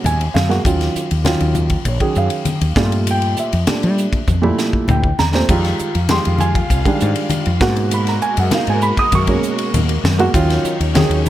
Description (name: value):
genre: electric jazz fusion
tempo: 99 BPM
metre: 4/4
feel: straight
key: unclear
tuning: A4 = 440 Hz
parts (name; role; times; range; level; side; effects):
- dark grand piano; accompaniment; 0.0-11.3 s; Bb2 to Eb6; -18 LUFS; right 2 dB; none
- woody fretless electric bass; bass; 0.0-11.3 s; Bb1 to G3; -18 LUFS; left 1 dB; none
- congas; percussion; 0.0-11.3 s; none; -22 LUFS; left 3 dB; none
- crisp fusion drum kit; drums; 0.1-11.3 s; crash cymbal, hi-hat, kick drum, ride cymbal, snare drum, toms; -21 LUFS; equal; none
- string machine, violas; sustained chords; 5.5-11.3 s; Eb3 to F5; -25 LUFS; left 1 dB; ensemble chorus
room: light reverb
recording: none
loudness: -14 LUFS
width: side -13 dB against mid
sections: 0.0-11.3 A section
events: drum fill 4.3-5.5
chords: 0.0 Abm9; 0.7 Ebm9; 2.8 Gm9; 5.5 Fm9; 7.6 Abm9; 10.3 Ebm9